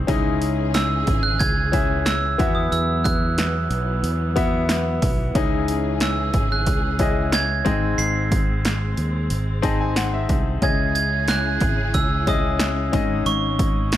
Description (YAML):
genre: piano-driven pop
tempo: 91 BPM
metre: 4/4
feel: straight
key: C# minor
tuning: A4 = 439 Hz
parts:
  - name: bright concert grand piano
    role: accompaniment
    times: 0.0-14.0 s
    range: G#2 to A5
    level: -26 LUFS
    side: left 4 dB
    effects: none
  - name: warm studio string section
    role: sustained chords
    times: 0.0-14.0 s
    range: C#3 to G#4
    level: -31 LUFS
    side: left 1 dB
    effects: none
  - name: fingered electric bass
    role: bass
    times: 0.0-14.0 s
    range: G#1 to E2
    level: -24 LUFS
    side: equal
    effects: none
  - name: punchy analog drum machine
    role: drums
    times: 0.1-14.0 s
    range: hi-hat, kick drum, snare drum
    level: -23 LUFS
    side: equal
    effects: none
  - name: glockenspiel with soft plastic mallets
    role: melody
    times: 0.7-14.0 s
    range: C#6 to B#6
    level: -25 LUFS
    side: right 4 dB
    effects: none
room: light reverb, small room reverb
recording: none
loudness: -18 LUFS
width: side -12 dB against mid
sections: 0.0-14.0 A section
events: grand piano fill 9.3-10.6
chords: 0.1 C#madd9; 2.4 Esus2; 5.4 C#madd9; 7.7 G#; 10.6 C#madd9; 12.9 G#sus4